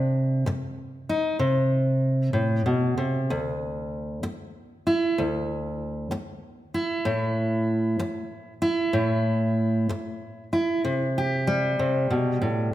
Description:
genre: folk, solo fingerstyle acoustic guitar.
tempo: 64 BPM (dotted quarters).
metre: 6/8.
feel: straight.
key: unclear.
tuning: A4 = 445 Hz.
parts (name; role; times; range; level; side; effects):
fingerpicked steel-string acoustic guitar; solo; 0.0-12.7 s; D2 to G4; -23 LUFS; equal; none.
room: wet recital hall reverb, RT60 1.7 s.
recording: none.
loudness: -23 LUFS.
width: side -13 dB against mid.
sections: 0.0-10.9 A section; 10.9-12.7 B section.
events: none.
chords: 0.0 N.C.; 3.3 Dsus2; 7.1 A5; 10.9 C5.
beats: 0.47 | 1.40 2.34 | 3.29 4.24 | 5.18 6.12 | 7.05 7.99 | 8.94 9.89 | 10.85 11.80 | 12.74.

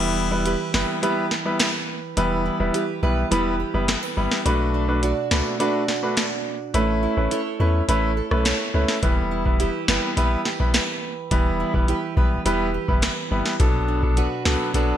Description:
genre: dancehall.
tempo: 105 BPM.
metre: 4/4.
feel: straight.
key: E dorian.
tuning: A4 = 440 Hz.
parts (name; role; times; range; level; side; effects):
clear concert grand piano; accompaniment; 0.0-15.0 s; F#3 to B4; -24 LUFS; left 1 dB; sidechain pumping.
fingerpicked plugged-in steel-string acoustic guitar; arpeggios; 0.0-15.0 s; B2 to D5; -28 LUFS; right 5 dB; wide subtle chorus.
punchy sub bass; bass; 0.0-14.6 s; E1 to E2; -24 LUFS; equal; none.
booming analog drum machine; drums; 0.5-14.9 s; hi-hat, kick drum, rim click, snare drum; -23 LUFS; equal; gated reverb.
room: light reverb.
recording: bright 1980s-style digital production.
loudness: -20 LUFS.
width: side -10 dB against mid.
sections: 0.0-15.0 A section.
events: break 0.0-9.0.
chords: 0.0 Em; 4.5 Bm7; 6.7 Aadd9; 9.0 Em; 13.6 Bm7.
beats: 0.46 1.03 1.60 | 2.17 2.74 3.31 3.88 | 4.46 5.03 5.60 6.17 | 6.74 7.31 7.88 8.46 | 9.03 9.60 10.17 10.74 | 11.31 11.88 12.46 13.03 | 13.60 14.17 14.74.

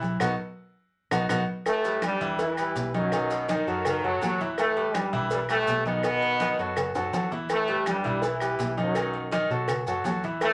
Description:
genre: latin, salsa.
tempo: 165 BPM.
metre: 4/4.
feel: straight.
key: E harmonic minor.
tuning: A4 = 439 Hz.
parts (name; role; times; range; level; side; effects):
bright grand piano; accompaniment; 0.0-10.5 s; D#3 to E5; -32 LUFS; equal; none.
vintage muted fingered electric bass; bass; 0.0-10.5 s; B1 to B2; -39 LUFS; equal; none.
agogo bells and timbales; percussion; 0.0-10.5 s; none; -37 LUFS; equal; none.
congas; percussion; 0.0-10.5 s; none; -36 LUFS; equal; none.
maracas; percussion; 0.0-10.5 s; none; -49 LUFS; equal; none.
claves; percussion; 0.2-10.5 s; none; -40 LUFS; equal; none.
cowbell; percussion; 0.2-10.5 s; none; -36 LUFS; equal; none.
brilliant trombone section; melody; 1.7-10.5 s; F#2 to E4; -29 LUFS; equal; none.
clear saxophone section; second line; 3.3-4.5 s; B2 to F#3; -33 LUFS; equal; none.
room: wet studio reverb, RT60 0.5 s.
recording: none.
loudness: -27 LUFS.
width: mono.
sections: 0.0-1.7 A section; 1.7-10.5 B section.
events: band accent 0.2-1.7; drum fill 0.6-1.7, 7.0-7.5.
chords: 0.2 B; 1.7 Em; 3.1 B7; 4.6 Em; 6.0 B7; 7.5 Em; 9.0 B7.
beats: | 0.21 0.57 0.94 1.30 | 1.67 2.03 2.40 2.76 | 3.12 3.49 3.85 4.22 | 4.58 4.95 5.31 5.68 | 6.04 6.41 6.77 7.13 | 7.50 7.86 8.23 8.59 | 8.96 9.32 9.69 10.05 | 10.42.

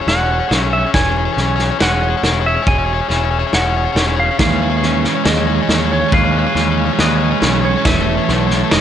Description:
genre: post-rock.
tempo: 69 BPM.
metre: 4/4.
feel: straight.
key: E major.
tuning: A4 = 438 Hz.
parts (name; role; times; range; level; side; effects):
clean lap steel guitar; melody; 0.0-8.8 s; C#5 to G#5; -20 LUFS; right 2 dB; slapback echo.
twangy electric guitar; arpeggios; 0.0-8.8 s; E3 to B4; -24 LUFS; right 1 dB; spring reverb, slapback echo.
overdriven electric guitar; riff; 0.0-8.8 s; G#4 to C#5; -20 LUFS; left 9 dB; none.
growling picked electric bass; bass; 0.1-8.8 s; E1 to D#2; -18 LUFS; equal; overdrive.
loose indie drum kit; drums; 0.1-8.8 s; kick drum, snare drum; -19 LUFS; equal; none.
thick fuzz guitar; riff; 4.4-8.8 s; E3 to A3; -20 LUFS; right 16 dB; distortion.
room: light reverb, small room ambience.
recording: nothing above 10.8 kHz.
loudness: -13 LUFS.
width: side -9 dB against mid.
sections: 0.0-8.8 A section.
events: build-up 0.0-8.8.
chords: 0.0 E69; 4.4 C#7; 7.9 F#m7/E (rootless).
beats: 0.08 | 0.94 1.81 2.67 3.54 | 4.40 5.26 6.13 7.00 | 7.86 8.72.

